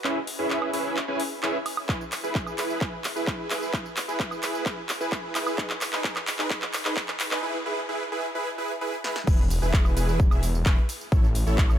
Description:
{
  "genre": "EDM, festival progressive house",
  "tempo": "130 BPM",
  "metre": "4/4",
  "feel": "straight",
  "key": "E major",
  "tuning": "A4 = 441 Hz",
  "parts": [
    { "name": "supersaw chords", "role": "riff", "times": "0.0-11.8 s", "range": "C#4 to G#5", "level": "-29 LUFS", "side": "right 1 dB", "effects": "wide subtle chorus, sidechain pumping, low-pass filter, tape echo" },
    { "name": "big-room dance drum kit", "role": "drums", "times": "0.0-11.8 s", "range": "crash cymbal, handclaps, hi-hat, snare drum, tambourine, woodblock", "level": "-30 LUFS", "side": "equal", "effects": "none" },
    { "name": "electronic kick drum", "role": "drums", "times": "1.9-11.7 s", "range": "none", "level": "-23 LUFS", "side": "equal", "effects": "none" },
    { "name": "detuned saw bass", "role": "bass", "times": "9.3-11.8 s", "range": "E1 to A1", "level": "-25 LUFS", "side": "equal", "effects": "sidechain pumping" }
  ],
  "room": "light reverb",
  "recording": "high-pass filter",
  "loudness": "-24 LUFS",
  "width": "side -10 dB against mid",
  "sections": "0.0-9.3 A section; 9.3-11.8 B section",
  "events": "build-up 0.0-9.3; drum fill 0.0-7.4, 9.0; break 7.4-9.3; drop 9.3-11.8",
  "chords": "0.0 C#m7; 1.9 E; 5.6 B; 7.4 E; 11.1 A"
}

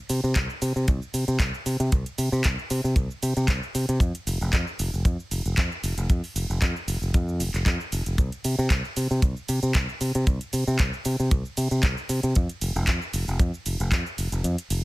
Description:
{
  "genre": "nu-disco, nu disco",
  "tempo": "115 BPM",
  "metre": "4/4",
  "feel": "swing 54% on 16ths",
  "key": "unclear",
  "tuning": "A4 = 439 Hz",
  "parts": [
    { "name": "fingered electric bass", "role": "bass", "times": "0.1-14.8 s", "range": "F1 to C3", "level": "-25 LUFS", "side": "equal", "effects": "none" },
    { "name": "house drum kit", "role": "drums", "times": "0.1-14.8 s", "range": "cabasa, handclaps, hi-hat, ride cymbal", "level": "-31 LUFS", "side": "right 1 dB", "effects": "overdrive" },
    { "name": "kick drum", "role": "drums", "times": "0.4-14.0 s", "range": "none", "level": "-22 LUFS", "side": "equal", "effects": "none" }
  ],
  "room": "little or no reverb",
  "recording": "none",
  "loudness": "-23 LUFS",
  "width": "side -20 dB against mid",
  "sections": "0.0-14.8 A section",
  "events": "kick drops out 14.4-14.8",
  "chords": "none"
}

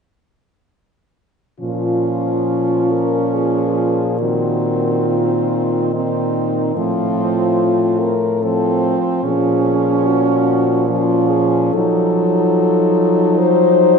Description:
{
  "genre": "classical, lyrical piece for horn quartet",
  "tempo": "71 BPM",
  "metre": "3/4",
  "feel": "uneven beats, rubato",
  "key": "Bb minor",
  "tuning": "A4 = 440 Hz",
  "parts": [
    { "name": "warm French horn", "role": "melody", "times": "1.6-14.0 s", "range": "Eb4 to C5", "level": "-19 LUFS", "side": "left 5 dB", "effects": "none" },
    { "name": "clear French horn", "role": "second line", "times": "1.6-14.0 s", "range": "C4 to Eb4", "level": "-20 LUFS", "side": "right 4 dB", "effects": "none" },
    { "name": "warm French horn", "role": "accompaniment", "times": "1.6-14.0 s", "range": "Eb3 to Gb3", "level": "-20 LUFS", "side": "left 2 dB", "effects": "none" },
    { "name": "mellow French horn", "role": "bass", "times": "1.6-14.0 s", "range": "A2 to F3", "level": "-20 LUFS", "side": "right 2 dB", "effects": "none" }
  ],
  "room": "wet church reverb, RT60 3.5 s",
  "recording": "recorded in a church or concert hall, nothing above 10.4 kHz",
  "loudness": "-14 LUFS",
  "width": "side -5 dB against mid",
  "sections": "1.6-14.0 A section",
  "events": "none",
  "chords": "1.6 Bbm; 4.2 Cm7b5/Bb; 6.8 F/A; 9.2 Bbm; 11.7 F7b9"
}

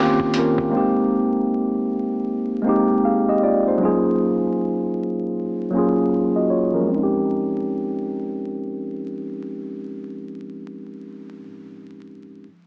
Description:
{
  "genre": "lo-fi hip hop",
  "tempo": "78 BPM",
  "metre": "4/4",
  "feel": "swing 64% on 16ths",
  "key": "F minor",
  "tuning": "A4 = 440 Hz",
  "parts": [
    { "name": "mellow tine electric piano", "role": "accompaniment", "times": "0.0-12.5 s", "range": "Eb3 to F5", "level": "-22 LUFS", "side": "equal", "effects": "low-pass filter" },
    { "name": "lo-fi sampler-style drum kit", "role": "drums", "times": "0.2-0.7 s", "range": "hi-hat, kick drum, snare drum", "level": "-29 LUFS", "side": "equal", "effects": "none" }
  ],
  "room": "moderate plate reverb, RT60 2.6 s",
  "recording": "vinyl crackle, small speaker sound",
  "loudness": "-21 LUFS",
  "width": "mono",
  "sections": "0.0-6.9 A section; 6.9-10.0 B section",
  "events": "filter sweep on tine electric piano 0.0-6.9",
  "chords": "0.0 Eb13; 0.7 Abmaj9; 3.8 Gbmaj9; 6.9 Fm9"
}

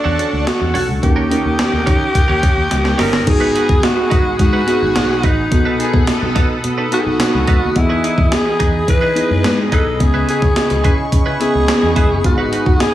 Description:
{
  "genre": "1980s-style pop",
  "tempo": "107 BPM",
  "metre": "4/4",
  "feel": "straight",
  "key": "unclear",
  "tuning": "A4 = 439 Hz",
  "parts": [
    { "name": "raspy alto saxophone", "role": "melody", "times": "0.0-12.9 s", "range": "D4 to B4", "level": "-18 LUFS", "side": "equal", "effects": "none" },
    { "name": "mellow FM electric piano", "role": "accompaniment", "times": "0.0-12.9 s", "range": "G#2 to D#5", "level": "-21 LUFS", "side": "left 2 dB", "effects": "chorus" },
    { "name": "sweeping resonant pad", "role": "sustained chords", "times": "0.0-12.9 s", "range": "G#4 to D#6", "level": "-25 LUFS", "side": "left 1 dB", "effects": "chorus" },
    { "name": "twelve-string electric guitar", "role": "riff", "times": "0.0-12.7 s", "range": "C#4 to B4", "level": "-25 LUFS", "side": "right 5 dB", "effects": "analog chorus, tape echo" },
    { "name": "fretless electric bass", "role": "bass", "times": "0.0-12.8 s", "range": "E1 to E3", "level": "-20 LUFS", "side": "equal", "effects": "lush chorus" },
    { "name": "gated 80s digital drum machine", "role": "drums", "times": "0.2-12.9 s", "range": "crash cymbal, hi-hat, kick drum, snare drum, tambourine", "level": "-16 LUFS", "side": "equal", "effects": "gated reverb, gated reverb snare" },
    { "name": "clear studio violin section", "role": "second line", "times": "5.8-6.8 s", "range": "G#4 to A4", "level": "-27 LUFS", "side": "left 3 dB", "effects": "tape echo" }
  ],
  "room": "light reverb",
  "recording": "small room ambience",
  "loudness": "-12 LUFS",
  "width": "side -13 dB against mid",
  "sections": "0.0-3.3 A section; 3.3-12.9 B section",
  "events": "drum fill 2.7-3.3",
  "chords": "0.0 Dmaj7; 1.0 D#7; 3.3 G#m7; 5.5 B7; 7.8 Emaj7; 10.0 C#m7; 12.2 G#m7"
}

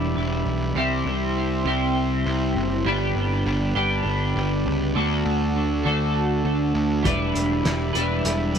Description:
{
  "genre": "psychedelic rock",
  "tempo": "201 BPM (eighths)",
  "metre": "7/8",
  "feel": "straight",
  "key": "unclear",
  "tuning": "A4 = 439 Hz",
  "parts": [
    { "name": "hand-pumped harmonium", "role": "sustained chords", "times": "0.0-8.6 s", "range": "F#4 to C6", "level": "-30 LUFS", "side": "right 3 dB", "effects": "none" },
    { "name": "twelve-string electric guitar", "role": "riff", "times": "0.0-8.6 s", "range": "G2 to B4", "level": "-23 LUFS", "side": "equal", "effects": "flanger, double-tracked left and right, tape echo" },
    { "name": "fuzz picked electric bass", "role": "bass", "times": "0.0-8.6 s", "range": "E1 to D2", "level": "-25 LUFS", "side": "equal", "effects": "overdrive" },
    { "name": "cloth-damped thuddy drum kit", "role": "drums", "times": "7.1-8.6 s", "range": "hi-hat, kick drum, snare drum", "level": "-28 LUFS", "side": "equal", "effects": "tape echo" }
  ],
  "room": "light reverb, small room ambience",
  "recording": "echo-heavy mix",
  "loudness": "-20 LUFS",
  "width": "side -7 dB against mid",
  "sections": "0.0-8.6 A section",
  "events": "none",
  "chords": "0.0 Em7; 0.8 C; 2.9 G; 5.0 D; 7.1 Em7"
}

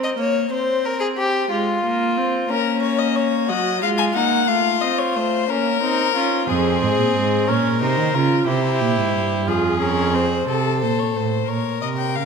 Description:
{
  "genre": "classical, baroque-style fugue for string quartet",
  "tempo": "60 BPM (dotted quarters)",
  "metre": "6/8",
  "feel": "straight",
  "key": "Bb minor",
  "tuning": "A4 = 439 Hz",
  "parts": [
    { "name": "rich violin", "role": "second line", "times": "0.0-12.3 s", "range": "Db4 to Eb5", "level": "-23 LUFS", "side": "left 3 dB", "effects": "none" },
    { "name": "warm viola", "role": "accompaniment", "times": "0.0-10.5 s", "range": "Gb3 to F4", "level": "-22 LUFS", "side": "right 2 dB", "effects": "none" },
    { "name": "warm violin", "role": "melody", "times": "2.5-12.3 s", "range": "Ab4 to Ab5", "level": "-22 LUFS", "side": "left 10 dB", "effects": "none" },
    { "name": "dark cello", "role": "bass", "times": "6.5-12.3 s", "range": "F2 to Eb3", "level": "-21 LUFS", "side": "right 5 dB", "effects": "none" }
  ],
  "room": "moderate scoring stage reverb, RT60 2.0 s",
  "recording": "none",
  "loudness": "-17 LUFS",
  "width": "side -5 dB against mid",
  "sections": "0.0-10.5 A section; 10.5-12.3 B section",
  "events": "none",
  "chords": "0.0 Bbm; 0.5 C5; 1.5 Fm/Ab; 2.5 Bbm; 3.5 Ebm/Gb; 4.5 F/A; 5.5 Bbm; 6.5 Fm; 7.5 Bbm; 8.5 C7; 9.5 Fm; 10.5 Am; 11.5 Bbm"
}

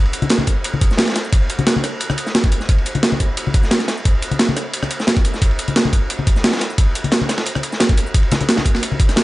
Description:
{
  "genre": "drum and bass",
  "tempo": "176 BPM",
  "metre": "4/4",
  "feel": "straight",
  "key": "none",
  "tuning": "none",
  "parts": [
    { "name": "breakbeat sampler-style drum kit", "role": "drums", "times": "0.1-9.2 s", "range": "hi-hat, rim click, shaker, snare drum", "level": "-19 LUFS", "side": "equal", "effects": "overdrive" },
    { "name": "crunchy breakbeat drum kit", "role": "drums", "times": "0.1-9.2 s", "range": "ride cymbal, snare drum", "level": "-23 LUFS", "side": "equal", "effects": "high-pass filter on cymbals, high-pass filter on snare, high-pass filter on room" },
    { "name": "congas", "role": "percussion", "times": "0.2-9.0 s", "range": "none", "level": "-22 LUFS", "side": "left 3 dB", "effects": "none" },
    { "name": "electronic kick drum", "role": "drums", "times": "0.5-9.1 s", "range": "none", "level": "-15 LUFS", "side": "equal", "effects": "none" }
  ],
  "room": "studio reverb",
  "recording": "nothing above 10.5 kHz",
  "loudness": "-15 LUFS",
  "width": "side -18 dB against mid",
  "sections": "0.0-9.2 A section",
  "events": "none",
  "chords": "none"
}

